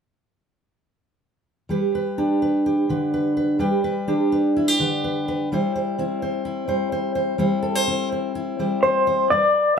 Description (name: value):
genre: folk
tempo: 126 BPM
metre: 4/4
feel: straight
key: C major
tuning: A4 = 445 Hz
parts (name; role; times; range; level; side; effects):
- fingerpicked steel-string acoustic guitar; accompaniment; 1.7-9.8 s; D3 to C5; -20 LUFS; equal; none
- electric guitar through a small old amp; melody; 8.8-9.8 s; C5 to D5; -16 LUFS; left 2 dB; tremolo
room: moderate studio reverb, RT60 0.6 s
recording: band playing live in one room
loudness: -19 LUFS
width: side -6 dB against mid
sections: 1.7-9.3 A section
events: none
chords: 1.7 G; 5.5 C/G